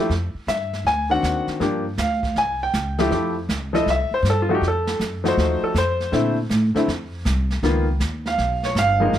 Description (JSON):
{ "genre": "jazz piano trio", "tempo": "160 BPM", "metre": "4/4", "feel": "swing 66% on 8ths", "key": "unclear", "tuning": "A4 = 439 Hz", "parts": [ { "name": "clear grand piano", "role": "melody", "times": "0.0-9.2 s", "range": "D3 to Ab5", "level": "-20 LUFS", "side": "left 1 dB", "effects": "none" }, { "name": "upright bass", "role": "bass", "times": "0.1-9.2 s", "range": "Gb1 to Bb2", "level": "-23 LUFS", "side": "equal", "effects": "none" }, { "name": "jazz brush drum kit", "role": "drums", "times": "0.1-9.2 s", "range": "brushed snare drum, hi-hat, kick drum, snare drum", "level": "-30 LUFS", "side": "right 3 dB", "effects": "none" } ], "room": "light reverb", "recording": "none", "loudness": "-19 LUFS", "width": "side -11 dB against mid", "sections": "0.0-3.1 A section; 3.1-9.2 B section", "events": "grand piano solo 3.1-9.2", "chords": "0.1 Fsus2; 0.9 D7b9; 1.6 Gm7; 2.4 C5; 3.1 Fmaj9; 4.6 F7b9; 6.1 Bbmaj9#11; 7.6 Db13", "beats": "| 0.10 0.48 0.85 1.23 | 1.61 1.98 2.36 2.73 | 3.11 3.49 3.86 4.24 | 4.62 4.99 5.37 5.75 | 6.12 6.50 6.87 7.25 | 7.63 8.00 8.38 8.75 | 9.13" }